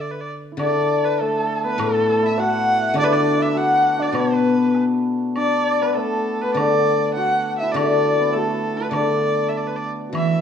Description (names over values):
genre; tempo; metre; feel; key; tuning
chinese traditional, Chinese chamber ensemble; 100 BPM; 2/4; rubato; D gong mode; A4 = 440 Hz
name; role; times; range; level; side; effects
rich erhu; melody; 0.0-10.4 s; A4 to F#5; -23 LUFS; right 3 dB; none
guzheng; accompaniment; 0.0-10.4 s; A2 to E3; -22 LUFS; left 2 dB; none
hammered dulcimer; second line; 0.5-10.4 s; A3 to F#4; -24 LUFS; right 3 dB; none
mellow xiao; second line; 0.6-10.4 s; D4 to D6; -23 LUFS; left 6 dB; none
woodblock; percussion; 0.6-10.3 s; none; -34 LUFS; equal; none
dark cello; second line; 10.2-10.4 s; E3; -20 LUFS; right 8 dB; none
room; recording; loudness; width
wet recital hall reverb, RT60 1.3 s; none; -17 LUFS; side -8 dB against mid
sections
0.6-10.2 A section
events
none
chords
none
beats
| 0.59 1.20 | 1.79 2.38 | 2.97 3.55 | 4.14 4.75 | 5.36 5.97 | 6.57 7.17 | 7.76 8.35 | 8.94 9.54 | 10.16